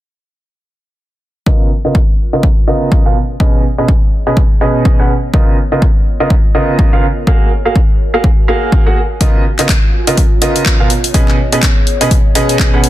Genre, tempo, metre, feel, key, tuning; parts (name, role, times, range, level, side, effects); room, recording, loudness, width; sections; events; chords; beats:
piano house; 124 BPM; 4/4; swing 58% on 16ths; Db mixolydian; A4 = 441 Hz
clear upright piano; riff; 1.5-12.8 s; Cb3 to Gb5; -15 LUFS; right 2 dB; sidechain pumping, low-pass filter, digital delay
electronic kick drum; drums; 1.5-12.7 s; -11 LUFS; equal
warbly tape-like pad; texture; 2.2-12.9 s; Cb4 to Ab5; -24 LUFS; equal; chorus, built-in reverb, sidechain pumping
house drum kit; drums; 9.2-12.9 s; handclaps, hi-hat; -17 LUFS; left 2 dB
little or no reverb; dense, heavily limited modern master; -9 LUFS; side -14 dB against mid
1.5-12.9 A section
fade-in on ambient pad 1.5-12.9; filter sweep on upright piano 1.5-12.9
1.5 Db13; 3.2 Cb69; 5.3 Db13; 7.3 Gbmaj9; 9.2 Db13; 10.9 Cb69
| 1.47 1.95 2.43 2.92 | 3.40 3.88 4.37 4.85 | 5.34 5.82 6.30 6.79 | 7.27 7.76 8.24 8.72 | 9.21 9.69 10.18 10.66 | 11.14 11.63 12.11 12.60